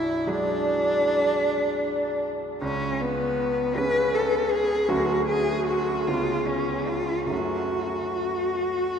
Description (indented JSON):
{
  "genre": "classical, romantic duo for cello and grand piano",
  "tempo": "46-54 BPM (dotted quarters)",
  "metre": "12/8",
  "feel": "rubato",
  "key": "unclear",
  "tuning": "A4 = 440 Hz",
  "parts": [
    { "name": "rich cello", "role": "melody", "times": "0.0-9.0 s", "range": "B3 to B4", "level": "-24 LUFS", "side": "left 1 dB", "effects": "none" },
    { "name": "clear grand piano", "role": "accompaniment", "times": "0.0-9.0 s", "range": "B1 to D4", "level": "-29 LUFS", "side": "right 2 dB", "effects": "none" }
  ],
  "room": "wet cathedral reverb, RT60 5.2 s",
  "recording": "minimal, uncompressed stereo recording",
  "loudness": "-22 LUFS",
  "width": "side -7 dB against mid",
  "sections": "0.0-9.0 A section",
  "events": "none",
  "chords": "0.0 G#m7b5/B; 2.6 C#5; 4.9 Dmaj7; 6.1 C#5; 7.3 F#m"
}